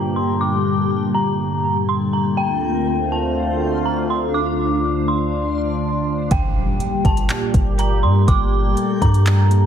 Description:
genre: hip hop, atmospheric cloud-rap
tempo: 122 BPM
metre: 4/4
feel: half-time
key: G minor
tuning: A4 = 440 Hz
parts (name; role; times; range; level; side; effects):
- dark detuned synth bell; melody; 0.0-9.7 s; G5 to D6; -24 LUFS; equal; chorus, phaser, low-pass filter, analog delay
- sweeping resonant pad; sustained chords; 0.0-9.7 s; D2 to G4; -20 LUFS; left 1 dB; chorus, sidechain pumping, low-pass filter
- backwards swelling texture; texture; 0.0-9.7 s; A3 to G5; -29 LUFS; right 2 dB; built-in reverb
- soft 808-style bass; bass; 6.3-9.7 s; F1 to G2; -17 LUFS; equal; none
- smooth R&B drum kit; drums; 6.3-9.6 s; handclaps, hi-hat, kick drum; -19 LUFS; equal; none
- impact; sound effects; 6.3-8.3 s; none; -30 LUFS; equal; none
room: digital ambience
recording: echo-heavy mix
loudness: -16 LUFS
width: side -9 dB against mid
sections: 0.0-6.3 A section; 6.3-9.7 B section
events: filter sweep 0.0-6.3; impact 6.3-8.3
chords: 0.0 Gmadd9; 2.4 Dm7; 6.3 Gmadd9

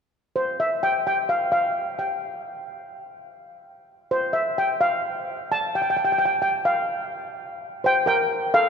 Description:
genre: calypso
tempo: 128 BPM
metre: 4/4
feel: swing 53% on 16ths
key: F major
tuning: A4 = 439 Hz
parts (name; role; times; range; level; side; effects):
- steel pan; solo; 0.4-8.7 s; A4 to A5; -21 LUFS; equal; none
room: wet cathedral reverb, RT60 4.6 s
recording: recorded in a church or concert hall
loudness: -21 LUFS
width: side -6 dB against mid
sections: 0.4-7.8 A section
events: none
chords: 0.4 N.C.; 7.8 Fsus2

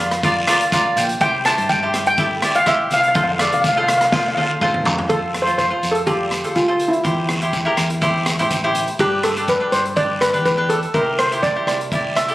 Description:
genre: calypso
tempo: 123 BPM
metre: 4/4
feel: straight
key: F major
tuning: A4 = 440 Hz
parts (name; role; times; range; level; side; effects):
- steel pan; melody; 0.0-12.3 s; E4 to A5; -18 LUFS; equal; tape echo
- cavaquinho; accompaniment; 0.0-12.3 s; D4 to G5; -20 LUFS; equal; none
- hollow-body short-scale fingered electric bass; bass; 0.0-12.3 s; A1 to G2; -27 LUFS; equal; none
- street-band drum kit; drums; 0.1-12.3 s; hi-hat, kick drum, rim click, snare drum, toms; -24 LUFS; equal; none
- guiro; percussion; 0.2-12.3 s; none; -28 LUFS; equal; none
room: light reverb, studio reverb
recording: recorded on a phone in the room, club reverb, compression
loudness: -15 LUFS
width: side -16 dB against mid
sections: 0.0-5.1 A section; 5.1-12.3 B section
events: cavaquinho fill 0.2-1.2; drum fill 4.1-5.1; steel pan solo 5.1-12.3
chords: 0.0 Bb; 1.2 C; 3.2 F; 7.0 C/E; 9.0 G; 10.9 C

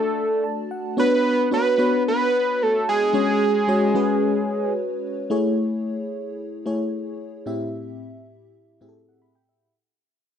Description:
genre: pop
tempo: 111 BPM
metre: 4/4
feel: straight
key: A major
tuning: A4 = 440 Hz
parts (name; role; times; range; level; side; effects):
- fat analog lead; melody; 0.0-4.7 s; G#4 to B4; -20 LUFS; right 1 dB; slapback echo
- FM electric piano with soft pad layer; accompaniment; 0.0-9.7 s; A2 to B5; -23 LUFS; left 1 dB; chorus, tremolo
room: little or no reverb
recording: dry, close 1970s-style studio recording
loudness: -20 LUFS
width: side -8 dB against mid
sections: 0.0-5.3 A section; 5.3-9.6 B section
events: FM electric piano fill 0.2-1.0, 8.5-9.6; fade-out 5.3-9.6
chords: 0.0 D; 1.0 Bmadd9; 3.1 F#sus2; 5.3 Amaj7; 7.5 C/A

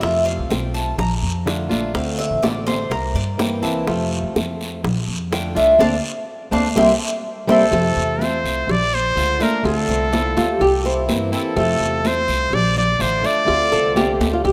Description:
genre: latin, Cuban son and guajira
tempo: 125 BPM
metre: 4/4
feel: straight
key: F major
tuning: A4 = 438 Hz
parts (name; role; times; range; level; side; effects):
- fingerpicked plugged-in swing-style acoustic guitar; accompaniment; 0.0-14.5 s; C3 to F4; -26 LUFS; equal; none
- Cuban tres; arpeggios; 0.0-14.5 s; A3 to Bb5; -24 LUFS; equal; none
- upright bass; bass; 0.0-14.5 s; A1 to G2; -27 LUFS; equal; none
- bongos and cowbell; percussion; 0.0-14.5 s; none; -30 LUFS; equal; none
- congas; percussion; 0.0-14.5 s; none; -27 LUFS; equal; none
- guiro; percussion; 0.0-14.5 s; none; -34 LUFS; equal; none
- clear trumpet; melody; 7.5-14.2 s; A4 to D5; -23 LUFS; equal; none
- nylon-string guitar; second line; 10.1-14.5 s; E4 to C5; -24 LUFS; equal; none
room: moderate lush hall reverb, RT60 3.0 s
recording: rough home demo mix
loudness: -19 LUFS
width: mono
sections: 0.0-7.7 A section; 7.7-14.5 B section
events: Cuban tres solo 0.0-7.7; band accent 5.8-7.7; drum fill 7.0-7.7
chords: 0.0 F; 1.0 Bbmaj7; 1.9 Dm7; 2.9 C7; 3.9 F; 4.8 Bbmaj7; 5.8 Dm7; 6.8 C7; 7.7 Fmaj7; 8.7 Bbmaj7; 9.7 Dm7; 10.6 C7; 11.6 Fmaj7; 12.5 Bbmaj7; 13.5 Dm7

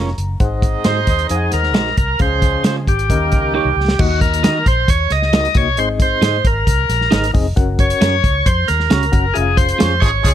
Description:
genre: uptempo 1960s-style soul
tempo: 134 BPM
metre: 4/4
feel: straight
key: Ab mixolydian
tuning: A4 = 442 Hz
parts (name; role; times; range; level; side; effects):
- clear horn section; second line; 0.0-3.8, 10.0-10.3 s; F3 to Eb5; -26 LUFS; right 3 dB; none
- reed electric piano; accompaniment; 0.0-9.8 s; Ab2 to Bb5; -24 LUFS; left 6 dB; fast tremolo, plate reverb
- electric guitar through a small old amp; stabs; 0.0-9.9 s; Ab3 to Eb5; -23 LUFS; right 7 dB; none
- vintage muted fingered electric bass; bass; 0.0-10.3 s; F1 to Eb3; -20 LUFS; equal; none
- warm soul drum kit; drums; 0.1-10.3 s; crash cymbal, hi-hat, kick drum, snare drum; -17 LUFS; equal; none
- overdriven tonewheel organ; melody; 0.8-10.3 s; Gb4 to Eb5; -18 LUFS; equal; slow rotary speaker
room: light reverb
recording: none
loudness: -13 LUFS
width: side -11 dB against mid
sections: 0.0-4.0 A section; 4.0-10.3 B section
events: reed electric piano fill 0.0-0.4; drum fill 3.5-4.0; band accent 9.4-10.3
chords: 0.4 Ab7; 2.2 Dbmaj7; 3.1 Eb7; 4.0 Ebm; 5.8 Ab; 7.6 Gb; 9.4 Db/F

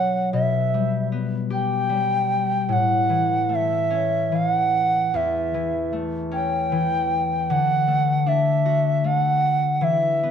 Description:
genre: children's music, lullaby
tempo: 76 BPM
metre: 3/4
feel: rubato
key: D major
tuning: A4 = 440 Hz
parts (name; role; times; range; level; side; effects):
- bright reedy bass bansuri; melody; 0.0-10.3 s; E5 to G5; -21 LUFS; right 2 dB; none
- concert harp; accompaniment; 0.0-10.3 s; E2 to G4; -23 LUFS; left 5 dB; none
room: moderate recital hall reverb, RT60 1.6 s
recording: nothing above 10.8 kHz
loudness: -19 LUFS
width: side -8 dB against mid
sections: 0.0-10.3 A section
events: none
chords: 0.3 Em/B; 2.7 A; 7.5 D

